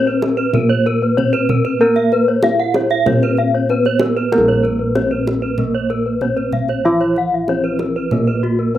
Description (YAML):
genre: Balinese gamelan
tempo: 95 BPM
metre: 4/4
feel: straight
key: Bb pelog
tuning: A4 = 437 Hz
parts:
  - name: gamelan-type bronze metallophone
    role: melody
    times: 0.0-8.8 s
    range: Bb3 to F4-45c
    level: -20 LUFS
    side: equal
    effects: none
  - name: gamelan-type bronze metallophone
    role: arpeggios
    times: 0.0-8.8 s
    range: Gb4-40c to Gb5-40c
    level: -20 LUFS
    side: left 5 dB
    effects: slapback echo
  - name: gamelan-type bossed gongs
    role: bass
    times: 0.0-8.8 s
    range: Bb1 to Bb4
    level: -19 LUFS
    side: equal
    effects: none
  - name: gamelan-type bronze metallophone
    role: arpeggios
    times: 0.1-8.4 s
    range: Cb5 to Gb5-40c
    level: -22 LUFS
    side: right 7 dB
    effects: slapback echo
  - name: kendang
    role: percussion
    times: 0.2-8.8 s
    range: none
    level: -22 LUFS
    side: right 2 dB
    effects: none
  - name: gamelan-type bronze metallophone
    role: accompaniment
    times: 4.3-8.8 s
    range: F3-45c to Bb3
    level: -26 LUFS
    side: right 3 dB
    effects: none
room: little or no reverb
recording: recorded outdoors, with no room sound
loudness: -14 LUFS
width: side -12 dB against mid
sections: 0.0-8.8 A section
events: none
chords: none